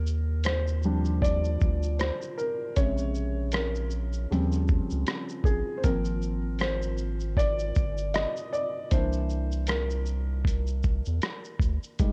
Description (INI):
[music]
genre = lo-fi hip hop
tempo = 78 BPM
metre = 4/4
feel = swing 57% on 16ths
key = Eb major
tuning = A4 = 441 Hz
[part]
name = felt-muted upright piano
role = accompaniment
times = 0.0-12.1 s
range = C3 to Eb5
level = -33 LUFS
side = equal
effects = cassette tape, low-pass filter
[part]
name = round analog bass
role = bass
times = 0.0-12.1 s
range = F1 to E2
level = -31 LUFS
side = equal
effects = none
[part]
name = lo-fi sampler-style drum kit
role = drums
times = 0.1-12.1 s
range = hi-hat, kick drum, rim click, shaker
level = -30 LUFS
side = equal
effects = none
[sound]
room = digital ambience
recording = cassette tape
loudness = -28 LUFS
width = mono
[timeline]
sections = 0.0-12.1 A section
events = felt piano solo 0.0-12.1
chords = 0.0 Ebmaj9; 2.8 Bbm9; 4.3 Eb13; 5.8 Ab6; 8.9 C7